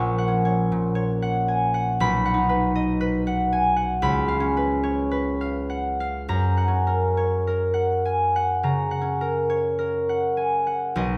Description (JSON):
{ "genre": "classical, solo harp piece", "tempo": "50-59 BPM", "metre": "4/4", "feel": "rubato", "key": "F# major", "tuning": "A4 = 441 Hz", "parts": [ { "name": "concert harp", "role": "solo", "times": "0.0-11.2 s", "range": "A#1 to C#6", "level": "-23 LUFS", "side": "equal", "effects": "none" } ], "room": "wet recital hall reverb, RT60 1.4 s", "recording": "none", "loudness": "-23 LUFS", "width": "mono", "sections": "0.0-10.9 A section", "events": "none", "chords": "0.0 F#/A#; 2.0 B; 4.0 C#7; 6.2 F#", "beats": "0.95 | 1.98 3.00 4.02 5.09 | 6.25 7.45 8.62 9.78 | 10.94" }